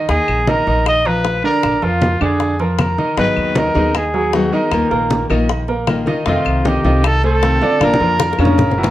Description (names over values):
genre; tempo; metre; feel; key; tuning
latin, Cuban son and guajira; 155 BPM; 4/4; straight; unclear; A4 = 440 Hz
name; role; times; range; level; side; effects
bright concert grand piano; arpeggios; 0.0-8.9 s; Db3 to Bb5; -19 LUFS; right 2 dB; none
warm trumpet; melody; 0.1-8.9 s; F4 to Eb5; -18 LUFS; equal; none
upright bass; bass; 0.1-8.9 s; Gb1 to F2; -20 LUFS; equal; none
bongos; percussion; 0.1-8.9 s; none; -24 LUFS; left 6 dB; none
congas; percussion; 0.1-8.9 s; none; -22 LUFS; equal; none
claves; percussion; 0.3-8.6 s; none; -29 LUFS; left 8 dB; none
nylon-string guitar; accompaniment; 3.2-8.6 s; C3 to Bb4; -19 LUFS; left 3 dB; none
room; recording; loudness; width
moderate large studio reverb, RT60 0.9 s; worn, warbling old tape, cassette tape, warbly pitch drift; -13 LUFS; side -14 dB against mid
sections
0.0-8.9 A section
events
drum fill 7.8-8.9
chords
0.0 Bb; 3.2 Abm7; 4.7 Ebsus2; 6.3 F7; 7.8 Bb